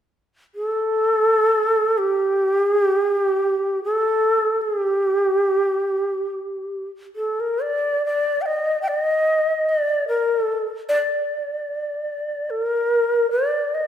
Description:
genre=japanese traditional, Japanese chamber music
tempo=free time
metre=none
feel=none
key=G hirajoshi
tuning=A4 = 440 Hz
part: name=breathy shakuhachi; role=solo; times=0.5-13.9 s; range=G4 to G5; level=-19 LUFS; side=equal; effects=none
room=moderate concert hall reverb, RT60 1.9 s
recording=recorded in a church or concert hall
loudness=-19 LUFS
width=side -10 dB against mid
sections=0.0-7.6 A section; 7.6-13.9 B section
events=none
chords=none

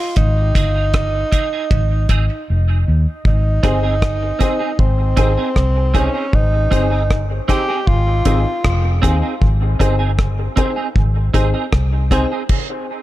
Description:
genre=dub reggae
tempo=78 BPM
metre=4/4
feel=straight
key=Ab major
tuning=A4 = 440 Hz
part: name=breathy tenor saxophone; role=melody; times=0.0-9.0 s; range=C4 to G4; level=-22 LUFS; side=right 1 dB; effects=dub echo
part: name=semi-hollow electric guitar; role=accompaniment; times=0.0-12.4 s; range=C4 to Ab4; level=-25 LUFS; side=right 5 dB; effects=ensemble chorus, high-pass filter, dub echo
part: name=vintage muted fingered electric bass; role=bass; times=0.2-12.2 s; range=F1 to Eb2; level=-16 LUFS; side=equal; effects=none
part: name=deep reggae drum kit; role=drums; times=0.2-12.7 s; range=crash cymbal, hi-hat, kick drum, rim click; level=-17 LUFS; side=equal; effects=none
part: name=cowbell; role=percussion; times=0.2-1.9 s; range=none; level=-40 LUFS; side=right 6 dB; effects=none
part: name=warm upright piano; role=stabs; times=3.6-12.3 s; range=C4 to C5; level=-24 LUFS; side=left 3 dB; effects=dub echo
room=small room ambience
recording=none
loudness=-14 LUFS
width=side -15 dB against mid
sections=0.0-3.3 A section; 3.3-13.0 B section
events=break 0.0-3.3; filter sweep 0.0-3.3; drums muted 2.5-3.3; stop 12.5-13.0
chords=0.0 Ab; 12.5 N.C.

